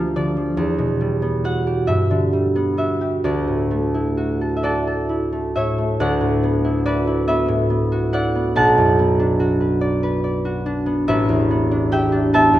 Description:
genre	classical, solo harp piece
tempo	43-49 BPM (dotted quarters)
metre	6/8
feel	rubato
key	D major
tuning	A4 = 435 Hz
part	concert harp	solo	0.0-12.6 s	A1 to A5	-17 LUFS	equal	none
room	wet recital hall reverb, RT60 1.4 s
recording	none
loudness	-17 LUFS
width	side -14 dB against mid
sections	0.0-6.0 A section; 6.0-12.6 B section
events	none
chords	0.0 Gm9/D; 0.6 Em9; 1.9 Gmaj7; 3.2 Dadd9; 6.0 D69; 8.6 Bm7; 11.1 A11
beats	| 0.58 1.88 | 3.24 4.63 | 5.99 7.28 | 8.57 9.82 | 11.07 12.33

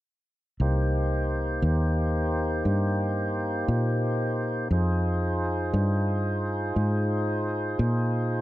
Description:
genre	blues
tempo	58 BPM (dotted quarters)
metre	12/8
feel	straight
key	C minor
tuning	A4 = 443 Hz
part	tonewheel organ	sustained chords	0.6-8.4 s	Bb3 to C5	-28 LUFS	equal	slow rotary speaker, plate reverb
part	fingered electric bass	bass	0.6-8.4 s	C2 to Bb2	-26 LUFS	equal	none
room	light reverb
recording	dark, warm production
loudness	-24 LUFS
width	side -16 dB against mid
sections	0.6-8.4 A section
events	none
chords	0.6 Cm7; 4.7 Fm7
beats	| 0.60 1.63 2.66 3.69 | 4.72 5.75 6.77 7.80

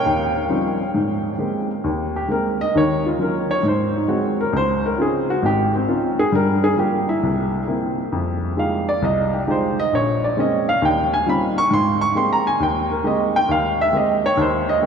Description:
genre	solo jazz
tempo	134 BPM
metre	4/4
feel	swing 67% on 8ths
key	Ab major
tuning	A4 = 439 Hz
part	warm baby grand piano	solo	0.0-14.9 s	Ab1 to Db6	-17 LUFS	equal	none
room	wet cathedral reverb, RT60 6.9 s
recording	in a vast, echoing space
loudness	-17 LUFS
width	side -6 dB against mid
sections	0.9-14.9 A section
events	grand piano solo 0.9-14.9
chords	0.0 Eb13; 0.9 Abmaj9; 2.7 Ebm9; 3.6 Ab7; 4.5 Dbmaj9; 6.3 Gm7; 7.2 C7; 8.1 Fm9; 9.9 Bbm9; 10.8 Eb13; 11.7 Abmaj9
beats	0.04 0.49 | 0.94 1.39 1.84 2.29 | 2.73 3.18 3.63 4.08 | 4.53 4.98 5.43 5.88 | 6.32 6.77 7.22 7.67 | 8.12 8.57 9.01 9.46 | 9.91 10.36 10.80 11.25 | 11.69 12.14 12.59 13.03 | 13.48 13.92 14.37 14.81

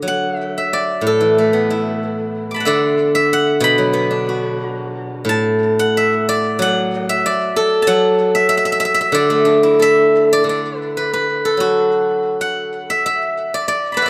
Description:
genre	chinese traditional, Chinese solo plucked strings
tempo	93 BPM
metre	2/4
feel	rubato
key	D gong mode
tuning	A4 = 440 Hz
part	steel-string zither	solo	0.0-14.1 s	A2 to D6	-16 LUFS	equal	tape echo
room	light reverb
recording	close, detailed microphones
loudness	-16 LUFS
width	mono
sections	0.0-10.5 A section; 10.5-14.1 B section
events	none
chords	none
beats	| 0.04 0.72 | 1.38 2.04 | 2.68 3.31 | 3.94 4.58 | 5.25 5.93 | 6.60 7.24 | 7.87 8.50 | 9.13 9.78 | 10.45 11.11 | 11.75 12.38 | 13.01 13.64

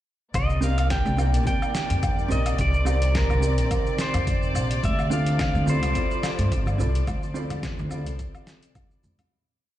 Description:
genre	sunset chillout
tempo	107 BPM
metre	4/4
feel	swing 55% on 16ths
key	C dorian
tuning	A4 = 441 Hz
part	muted studio string section	sustained chords	0.3-9.3 s	C3 to D5	-32 LUFS	equal	none
part	upright bass	bass	0.3-9.3 s	A1 to G2	-24 LUFS	equal	none
part	dusty soul sampler-style drum kit	drums	0.3-9.3 s	cabasa, hi-hat, snare drum, woodblock	-33 LUFS	left 1 dB	none
part	electronic kick drum	drums	0.3-8.9 s	none	-28 LUFS	equal	none
part	pedal steel guitar	melody	0.4-8.7 s	Bb4 to G5	-29 LUFS	right 2 dB	digital delay
part	drifting glass-harmonics texture	texture	1.0-9.3 s	D6	-42 LUFS	right 2 dB	chorus, built-in reverb
part	hollow-body jazz guitar	accompaniment	0.6-9.3 s	C4 to D5	-32 LUFS	right 1 dB	auto-pan, digital delay
part	congas	percussion	5.7-9.3 s	none	-34 LUFS	right 2 dB	none
room	light reverb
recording	played on a big sound system in a bare room, stone room reverb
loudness	-21 LUFS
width	side -13 dB against mid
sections	0.3-9.3 chorus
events	fade-out 6.3-9.3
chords	0.3 Cm9; 4.8 Dm9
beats	| 0.35 0.91 1.47 2.03 | 2.59 3.15 3.71 4.27 | 4.83 5.39 5.95 6.51 | 7.08 7.64 8.20 8.76

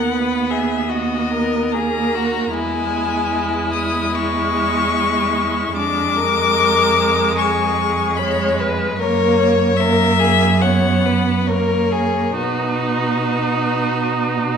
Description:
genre	classical, slow romantic movement for string quartet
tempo	73 BPM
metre	4/4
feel	uneven beats, rubato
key	B major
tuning	A4 = 439 Hz
part	rich violin	melody	0.0-14.6 s	B4 to D#6	-20 LUFS	left 8 dB	none
part	rich violin	second line	0.0-14.6 s	D4 to C#5	-22 LUFS	left 3 dB	none
part	rich viola	accompaniment	0.0-14.6 s	G#3 to D#4	-21 LUFS	right 4 dB	none
part	rich cello	bass	0.0-14.6 s	D#2 to B2	-22 LUFS	right 4 dB	none
room	wet recital hall reverb, RT60 1.6 s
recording	minimal, uncompressed stereo recording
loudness	-15 LUFS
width	side -7 dB against mid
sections	0.0-14.6 A section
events	none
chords	0.0 B/D#; 2.5 C#m/E; 5.8 C#13b9/E#; 9.0 F#7; 10.6 B5/F#; 11.5 F#; 12.4 B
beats	0.11 0.89 1.73 | 2.53 3.33 4.15 4.96 | 5.76 6.57 7.37 8.18 | 8.99 9.79 10.62 11.48 | 12.38 13.27 14.16

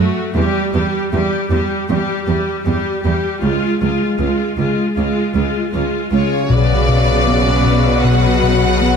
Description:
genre	cinematic, hybrid orchestral and electronic film score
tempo	78 BPM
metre	4/4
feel	straight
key	unclear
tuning	A4 = 440 Hz
part	rich studio viola section	accompaniment	0.0-9.0 s	C#3 to G4	-19 LUFS	equal	none
part	rich symphonic cello section	bass	0.0-9.0 s	C#2 to B2	-19 LUFS	right 4 dB	none
part	clear symphonic violin section	melody	6.1-9.0 s	C#5 to F#5	-19 LUFS	left 4 dB	none
part	dark French horn section	sustained chords	6.1-9.0 s	C#3 to F#3	-20 LUFS	left 4 dB	none
part	clear symphonic violin section	second line	6.5-9.0 s	F#4 to B4	-22 LUFS	left 3 dB	none
part	round analog bass	riff	6.5-9.0 s	B2 to B3	-17 LUFS	left 3 dB	none
part	warm sub bass	bass	6.5-9.0 s	B1	-19 LUFS	equal	none
room	moderate scoring stage reverb, RT60 1.9 s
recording	none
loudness	-14 LUFS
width	side -6 dB against mid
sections	0.0-6.5 A section; 6.5-9.0 B section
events	build-up 0.0-6.5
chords	0.4 Em; 3.4 C#; 6.5 Bmadd9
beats	| 0.35 1.12 1.89 2.66 | 3.43 4.20 4.97 5.74 | 6.51 7.28 8.04 8.81

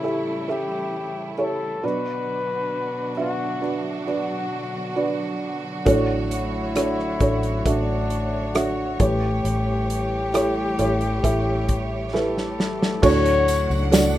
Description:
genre	pop ballad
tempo	67 BPM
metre	4/4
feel	straight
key	D major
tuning	A4 = 440 Hz
part	clear flugelhorn	melody	0.0-13.9 s	D4 to C#5	-27 LUFS	left 4 dB	none
part	felt-muted upright piano	accompaniment	0.0-14.2 s	A2 to E5	-24 LUFS	right 2 dB	none
part	clear studio string section	sustained chords	0.0-14.2 s	B2 to F#5	-30 LUFS	right 1 dB	none
part	vintage muted fingered electric bass	bass	5.9-14.2 s	A1 to D2	-26 LUFS	equal	none
part	loose indie drum kit	drums	5.9-14.1 s	crash cymbal, hi-hat, kick drum, rim click, snare drum	-22 LUFS	equal	none
part	tambourine	percussion	13.0-14.1 s	none	-35 LUFS	left 6 dB	none
room	light reverb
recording	rough home demo mix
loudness	-20 LUFS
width	side -13 dB against mid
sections	0.0-13.0 A section; 13.0-14.2 B section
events	drum fill 12.1-13.0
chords	0.0 A7; 1.8 Bm; 5.9 Dmaj7/A; 9.0 A7; 13.0 Dmaj7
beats	0.49 1.39 | 2.28 3.18 4.08 4.97 | 5.87 6.76 7.66 8.55 | 9.45 10.34 11.24 12.13 | 13.03 13.93

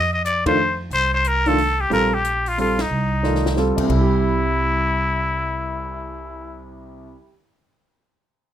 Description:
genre	modal jazz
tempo	181 BPM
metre	3/4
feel	swing 64% on 8ths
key	C mixolydian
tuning	A4 = 440 Hz
part	trumpet with straight mute	melody	0.0-6.6 s	Eb4 to Eb5	-21 LUFS	left 2 dB	none
part	upright bass	bass	0.0-7.1 s	Bb1 to F2	-24 LUFS	right 1 dB	none
part	compact cocktail drum kit	drums	0.3-5.8 s	crash cymbal, cymbal swell, hi-hat, kick drum, ride cymbal, snare drum	-32 LUFS	left 3 dB	none
part	warm concert grand piano	accompaniment	0.5-7.3 s	C2 to D5	-23 LUFS	right 1 dB	none
room	light reverb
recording	minimal, uncompressed stereo recording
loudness	-17 LUFS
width	side -10 dB against mid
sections	0.0-3.9 A section; 3.9-5.9 B section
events	band accent 0.4, 2.7; drum fill 3.2-3.6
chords	0.0 F9sus4; 3.9 C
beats	0.24 0.57 | 0.91 1.24 1.57 | 1.90 2.23 2.57 | 2.90 3.23 3.56 | 3.89 4.22 4.56 | 4.89 5.22 5.55

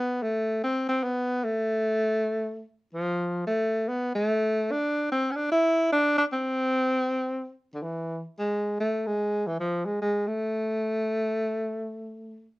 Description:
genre	jazz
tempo	147 BPM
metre	3/4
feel	swing 64% on 8ths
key	A minor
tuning	A4 = 440 Hz
part	bright alto saxophone	solo	0.0-12.5 s	D3 to E4	-25 LUFS	equal	none
room	moderate studio reverb, RT60 0.5 s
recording	worn, warbling old tape, cassette tape, warbly pitch drift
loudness	-25 LUFS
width	side -20 dB against mid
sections	0.0-12.6 A section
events	none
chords	none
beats	0.18 | 0.59 1.00 1.41 | 1.82 2.23 2.64 | 3.05 3.46 3.87 | 4.28 4.68 5.09 | 5.50 5.91 6.32 | 6.73 7.14 7.55 | 7.96 8.36 8.77 | 9.18 9.59 10.00 | 10.41 10.82 11.23 | 11.64 12.05 12.46

